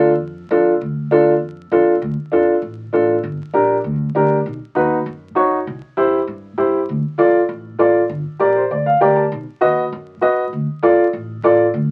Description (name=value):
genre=latin, cumbia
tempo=198 BPM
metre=4/4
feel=straight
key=D minor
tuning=A4 = 440 Hz
part: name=warm upright piano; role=accompaniment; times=0.0-11.7 s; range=D4 to A5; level=-16 LUFS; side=equal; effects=none
part: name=upright bass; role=bass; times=0.0-11.9 s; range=G1 to G2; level=-28 LUFS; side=equal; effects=none
room=moderate studio ambience, RT60 0.5 s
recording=very old 78 rpm record, vinyl crackle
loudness=-17 LUFS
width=mono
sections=0.0-2.0 A section; 2.0-11.7 B section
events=upright piano fill 8.4-9.3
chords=0.0 Dm; 3.2 Gm; 4.5 B; 5.7 C; 6.9 Dm; 8.1 Gm; 9.3 B; 10.5 Dm